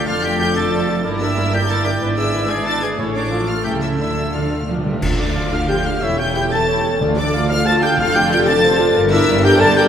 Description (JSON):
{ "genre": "classical, dramatic, fast romantic movement for symphony orchestra", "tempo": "184 BPM", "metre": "3/4", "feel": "rubato", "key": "D minor", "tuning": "A4 = 443 Hz", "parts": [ { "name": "warm symphonic violin section", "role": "melody", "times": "0.0-9.8 s", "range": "D6 to A6", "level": "-24 LUFS", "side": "left 3 dB", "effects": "none" }, { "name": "clear oboe", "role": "second line", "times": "0.0-9.8 s", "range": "D4 to A5", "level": "-24 LUFS", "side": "right 1 dB", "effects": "none" }, { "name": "mellow clarinet", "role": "second line", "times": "0.0-9.9 s", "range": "A4 to F5", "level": "-26 LUFS", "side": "left 1 dB", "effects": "none" }, { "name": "silver concert flute", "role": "second line", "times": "0.0-9.9 s", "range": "C#5 to A5", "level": "-28 LUFS", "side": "left 1 dB", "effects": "none" }, { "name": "warm symphonic violin section", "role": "second line", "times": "0.0-9.8 s", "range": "D5 to A5", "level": "-28 LUFS", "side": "left 1 dB", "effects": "none" }, { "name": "rich symphonic viola section", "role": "accompaniment", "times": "0.0-9.9 s", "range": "F3 to C#5", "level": "-24 LUFS", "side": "right 1 dB", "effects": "none" }, { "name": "dark French horn section", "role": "sustained chords", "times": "0.0-9.8 s", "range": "A3 to A4", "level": "-22 LUFS", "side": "left 2 dB", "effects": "none" }, { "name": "concert harp", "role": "arpeggios", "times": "0.0-9.9 s", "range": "F2 to B5", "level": "-26 LUFS", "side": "left 5 dB", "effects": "none" }, { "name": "warm trumpet", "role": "stabs", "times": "0.0-4.8 s", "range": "A4 to D5", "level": "-27 LUFS", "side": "right 2 dB", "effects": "none" }, { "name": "rich symphonic cello section", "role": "bass", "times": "0.0-9.9 s", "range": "D2 to G3", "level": "-24 LUFS", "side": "right 3 dB", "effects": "none" }, { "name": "rich symphonic double bass section", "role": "bass", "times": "0.0-9.9 s", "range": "E1 to D2", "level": "-25 LUFS", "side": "right 3 dB", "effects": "none" }, { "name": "cymbal swell, clash cymbals and concert bass drum", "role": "percussion", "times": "3.0-5.7 s", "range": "none", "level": "-27 LUFS", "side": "equal", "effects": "none" }, { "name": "timpani", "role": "percussion", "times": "3.0-5.0, 7.0-7.5 s", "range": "A2 to D3", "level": "-28 LUFS", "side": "right 1 dB", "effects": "none" } ], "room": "wet concert hall reverb, RT60 2.5 s", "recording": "none", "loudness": "-15 LUFS", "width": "side -8 dB against mid", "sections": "0.0-5.0 A section; 5.0-9.9 B section", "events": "timpani fill 4.0-5.0; band accent 5.0-5.4", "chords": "0.1 Dm/F; 1.0 Em7b5/G; 2.0 E7/G#; 3.0 A; 3.3 Dm/A; 3.6 A7/C#; 4.0 Dm; 6.0 A7/E; 7.0 Dm; 8.0 Dm/F; 9.0 Em7b5/G", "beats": "| 0.08 0.40 0.72 | 1.05 1.37 1.69 | 2.01 2.33 2.66 | 2.98 3.31 3.65 | 3.99 4.34 4.69 | 5.03 5.36 5.69 | 6.03 6.36 6.68 | 7.01 7.34 7.67 | 7.99 8.32 8.64 | 8.97 9.29 9.61" }